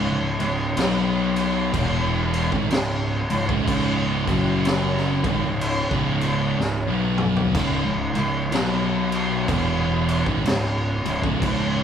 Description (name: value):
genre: stoner and doom metal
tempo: 62 BPM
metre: 4/4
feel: swing 62% on 8ths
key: C# minor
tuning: A4 = 440 Hz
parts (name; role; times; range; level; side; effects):
- thick fuzz guitar; riff; 0.0-11.8 s; C#2 to B3; -28 LUFS; left 8 dB; distortion
- thick fuzz guitar; riff; 0.0-11.8 s; C#2 to B3; -26 LUFS; right 4 dB; distortion
- thick fuzz guitar; riff; 0.0-11.8 s; C#2 to B3; -29 LUFS; left 2 dB; distortion
- fuzz picked electric bass; bass; 0.0-11.8 s; C#1 to B1; -28 LUFS; equal; overdrive
- raw garage drum kit; drums; 0.4-11.7 s; crash cymbal, kick drum, snare drum, splash cymbal, toms; -24 LUFS; equal; none
room: moderate large studio reverb, RT60 1.3 s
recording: band playing live in one room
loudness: -20 LUFS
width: side -8 dB against mid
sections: 0.0-11.8 A section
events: drum fill 6.6-7.6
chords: 0.0 C#5; 0.8 B5; 1.7 C#m; 4.2 F#5; 5.1 C#5; 8.5 B5; 9.5 C#m